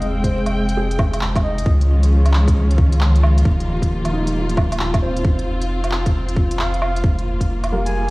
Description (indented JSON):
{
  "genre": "future garage",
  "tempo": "134 BPM",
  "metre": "4/4",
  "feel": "swing 64% on 16ths",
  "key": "F minor",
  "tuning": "A4 = 440 Hz",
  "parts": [
    { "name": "breathy flute-like synth lead", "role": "melody", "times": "0.0-1.7, 6.6-8.1 s", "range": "C5 to Ab5", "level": "-29 LUFS", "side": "equal", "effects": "wide subtle chorus, dub echo" },
    { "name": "warm upright piano", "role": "accompaniment", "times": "0.0-8.1 s", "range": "G3 to Ab4", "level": "-29 LUFS", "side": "right 1 dB", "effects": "sidechain pumping, digital delay" },
    { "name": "dark chamber string section", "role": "sustained chords", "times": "0.0-8.1 s", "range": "Eb3 to G5", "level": "-24 LUFS", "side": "left 1 dB", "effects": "sidechain pumping" },
    { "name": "soft dub sub bass", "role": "bass", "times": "0.0-8.1 s", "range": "F1 to Db2", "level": "-18 LUFS", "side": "equal", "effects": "sidechain pumping" },
    { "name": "organic electronic drum kit", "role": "drums", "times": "0.0-7.9 s", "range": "handclaps, hi-hat, woodblock", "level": "-26 LUFS", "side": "right 1 dB", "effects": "none" },
    { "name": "electronic kick drum", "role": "drums", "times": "0.2-7.5 s", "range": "none", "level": "-17 LUFS", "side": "equal", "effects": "none" }
  ],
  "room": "little or no reverb",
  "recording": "played on a big sound system in a bare room, large studio reverb, vinyl crackle",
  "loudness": "-15 LUFS",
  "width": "side -22 dB against mid",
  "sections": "0.0-8.1 A section",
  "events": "none",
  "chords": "0.0 Fm; 1.7 Dbadd9; 3.5 Ebadd9; 5.2 F5"
}